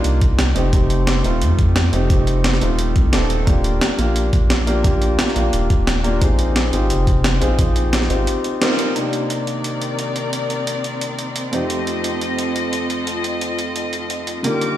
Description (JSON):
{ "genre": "liquid drum and bass", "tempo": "175 BPM", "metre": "4/4", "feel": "swing 53% on 16ths", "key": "unclear", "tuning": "A4 = 435 Hz", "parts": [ { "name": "dark concert grand piano", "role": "accompaniment", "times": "0.0-14.8 s", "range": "F2 to Bb4", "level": "-22 LUFS", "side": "equal", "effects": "low-pass filter, dub echo" }, { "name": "saturated sub bass", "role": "bass", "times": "0.0-8.3 s", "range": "Eb1 to F2", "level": "-18 LUFS", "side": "equal", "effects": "tube saturation" }, { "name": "breakbeat sampler-style drum kit", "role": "drums", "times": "0.0-14.7 s", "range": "hi-hat, snare drum", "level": "-23 LUFS", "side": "equal", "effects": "small room ambience" }, { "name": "electronic kick drum", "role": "drums", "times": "0.2-7.7 s", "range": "none", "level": "-17 LUFS", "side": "equal", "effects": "small room ambience" }, { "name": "dark chamber string section", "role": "sustained chords", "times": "9.0-14.8 s", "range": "Eb3 to D6", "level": "-23 LUFS", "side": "left 1 dB", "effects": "sidechain pumping" }, { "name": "breathy mellow jazz flute", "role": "melody", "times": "14.4-14.8 s", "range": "Bb4", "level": "-22 LUFS", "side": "left 1 dB", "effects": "none" } ], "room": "moderate lush hall reverb, RT60 2.0 s, studio reverb", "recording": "played on a big sound system in a bare room, large studio reverb", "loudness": "-16 LUFS", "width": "side -13 dB against mid", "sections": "0.0-9.0 A section; 9.0-14.8 B section", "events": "band accent 8.6", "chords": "0.0 Cm9; 0.6 F7; 3.5 Ebmaj7; 6.2 Bb7sus4; 9.0 Cm9; 11.5 F7" }